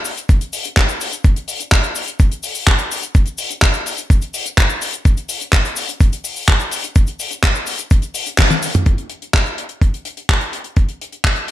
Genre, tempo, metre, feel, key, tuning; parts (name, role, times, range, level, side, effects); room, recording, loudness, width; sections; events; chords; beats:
italo disco; 126 BPM; 4/4; straight
damped 70s drum kit; drums; 0.0-11.5 s; cabasa, handclaps, hi-hat, toms; -18 LUFS; left 1 dB; small room reverb, gated reverb
electronic kick drum; drums; 0.3-11.3 s; -13 LUFS; equal; small room reverb
little or no reverb; -15 LUFS; side -14 dB against mid
0.0-8.9 A section; 8.9-11.5 B section
drum fill 8.4-8.9; band accent 8.4
0.29 0.77 | 1.24 1.72 2.20 2.67 | 3.15 3.62 4.10 4.58 | 5.05 5.53 6.01 6.48 | 6.96 7.43 7.91 8.39 | 8.86 9.34 9.81 10.29 | 10.77 11.24